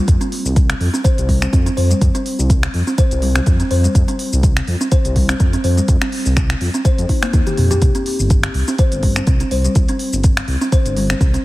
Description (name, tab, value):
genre	afro house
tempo	124 BPM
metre	4/4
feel	swing 55% on 16ths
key	unclear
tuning	A4 = 442 Hz
part	kalimba	arpeggios	0.0-11.4 s	G3 to C5	-21 LUFS	left 1 dB	sidechain pumping, ping-pong delay
part	dark detuned saw bass	bass	0.1-11.4 s	G1 to F2	-18 LUFS	equal	sidechain pumping
part	afro-pop drum kit	drums	0.1-11.4 s	finger snaps, hi-hat, shaker, toms	-23 LUFS	equal	none
part	electronic kick drum	drums	0.1-11.3 s	none	-15 LUFS	equal	none
room	light reverb, digital ambience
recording	heavily compressed radio sound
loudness	-13 LUFS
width	side -18 dB against mid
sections	0.0-11.4 A section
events	drum fill 7.3-7.8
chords	0.1 F5; 7.8 C5